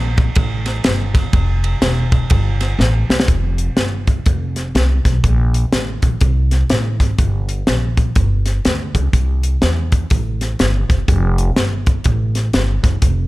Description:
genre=uptempo gospel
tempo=123 BPM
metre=4/4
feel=swing 62% on 8ths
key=F major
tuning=A4 = 440 Hz
part: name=upright bass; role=bass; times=0.0-13.3 s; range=E1 to E2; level=-17 LUFS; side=equal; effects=none
part: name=crisp fusion drum kit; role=drums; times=0.2-13.2 s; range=hi-hat, kick drum, ride cymbal, snare drum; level=-16 LUFS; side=equal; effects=none
room=little or no reverb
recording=none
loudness=-14 LUFS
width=side -19 dB against mid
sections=0.0-3.3 A section; 3.3-13.3 B section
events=drum fill 2.8-3.3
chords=none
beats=0.37 0.85 | 1.34 1.83 2.31 2.80 | 3.29 3.78 4.26 4.75 | 5.24 5.73 6.22 6.71 | 7.19 7.68 8.17 8.65 | 9.14 9.63 10.11 10.60 | 11.09 11.57 12.06 12.54 | 13.03

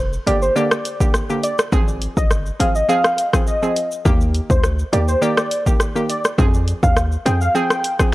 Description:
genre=dancehall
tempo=103 BPM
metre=4/4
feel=straight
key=unclear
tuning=A4 = 440 Hz
part: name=hard-hitting 808-style bass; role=bass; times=0.0-7.5 s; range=F1 to F2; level=-19 LUFS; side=equal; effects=none
part: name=deep house drum kit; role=drums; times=0.1-8.1 s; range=hi-hat, kick drum, rim click, shaker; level=-18 LUFS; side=equal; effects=none
part: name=warm velvety synth lead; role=melody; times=0.3-8.0 s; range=C5 to G5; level=-21 LUFS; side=equal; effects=chorus
part: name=hollow square pluck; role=accompaniment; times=0.3-8.1 s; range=D3 to Ab4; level=-22 LUFS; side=right 1 dB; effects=chorus
room=digital ambience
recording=dry, gritty hardware recording, cassette tape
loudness=-15 LUFS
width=side -18 dB against mid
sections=0.0-8.1 A section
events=none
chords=0.0 Gm; 1.7 Ab6; 4.1 Eb; 6.4 Fm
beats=0.56 1.14 | 1.72 2.31 2.89 3.47 | 4.05 4.64 5.22 5.80 | 6.38 6.97 7.55 8.13

